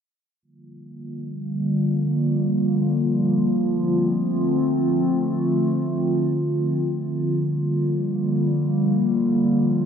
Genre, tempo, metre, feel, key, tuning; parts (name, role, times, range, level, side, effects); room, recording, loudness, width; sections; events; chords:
hip hop; free time; G minor; A4 = 440 Hz
warbly tape-like pad; sustained chords; 0.4-9.9 s; D3 to F4; -20 LUFS; equal; chorus, built-in reverb, tremolo, low-pass filter
moderate lush hall reverb, RT60 2.5 s; dark, warm production; -19 LUFS; side -7 dB against mid
0.4-9.9 A section
filter sweep on ambient pad 0.4-9.9
0.4 Gm7; 3.7 Dm7; 7.0 Gm7